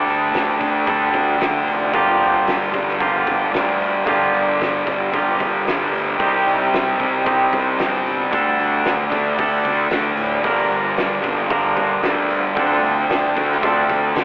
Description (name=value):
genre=rock, shoegaze and dream pop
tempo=113 BPM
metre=4/4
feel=straight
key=G minor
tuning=A4 = 440 Hz
part: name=thick fuzz guitar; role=riff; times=0.0-14.2 s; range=G2 to D4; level=-21 LUFS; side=left 1 dB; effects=distortion, wide subtle chorus
part: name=twangy electric guitar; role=riff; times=0.0-14.2 s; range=G2 to Bb4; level=-18 LUFS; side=right 1 dB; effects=reverse reverb
part: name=fuzz picked electric bass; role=bass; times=0.1-14.2 s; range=F1 to D3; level=-25 LUFS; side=equal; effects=overdrive
part: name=loose indie drum kit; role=drums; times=0.1-14.2 s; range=hi-hat, kick drum, snare drum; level=-26 LUFS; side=equal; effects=none
room=wet lush hall reverb, RT60 2.1 s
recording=dreamy mix soaked in reverb, telephone sound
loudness=-16 LUFS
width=side -23 dB against mid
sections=0.0-14.2 A section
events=none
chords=0.0 Dsus4; 1.9 Gm7; 6.2 Cm; 8.3 Dsus4; 10.4 Gm7; 12.6 Dm7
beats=0.34 0.87 1.41 | 1.94 2.47 3.00 3.54 | 4.07 4.60 5.13 5.67 | 6.20 6.73 7.26 7.79 | 8.32 8.85 9.38 9.91 | 10.44 10.97 11.50 12.03 | 12.56 13.10 13.63 14.16